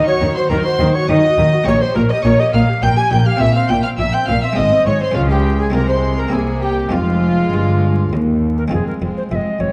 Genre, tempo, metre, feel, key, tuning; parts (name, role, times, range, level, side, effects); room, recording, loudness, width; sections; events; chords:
classical, baroque-style concerto movement with solo episodes; 103 BPM; 3/4; straight; F minor; A4 = 440 Hz
alto recorder; melody; 0.0-9.7 s; F4 to Ab5; -21 LUFS; equal
rich chamber violin section; melody; 0.0-9.7 s; F4 to Ab6; -31 LUFS; equal
buff-stop harpsichord; accompaniment; 0.0-9.7 s; Eb2 to Bb4; -26 LUFS; equal
dark chamber viola section; accompaniment; 0.0-9.7 s; Ab3 to Bb4; -26 LUFS; equal
rich chamber violin section; second line; 0.1-9.7 s; C4 to Ab5; -26 LUFS; equal
rich chamber double bass section; bass; 0.2-9.7 s; F1 to Eb2; -21 LUFS; equal
rich studio cello section; bass; 0.2-9.7 s; Eb2 to Eb3; -23 LUFS; equal
wet recital hall reverb, RT60 1.4 s; dark, warm production, vinyl crackle; -16 LUFS; mono
0.0-8.7 A section; 8.7-9.7 B section
0.0 Ebm; 1.7 Bbm13; 3.4 C5/Bb; 4.6 Fm/Ab; 5.2 Db; 5.7 Fm/C; 6.3 C7; 6.9 Fm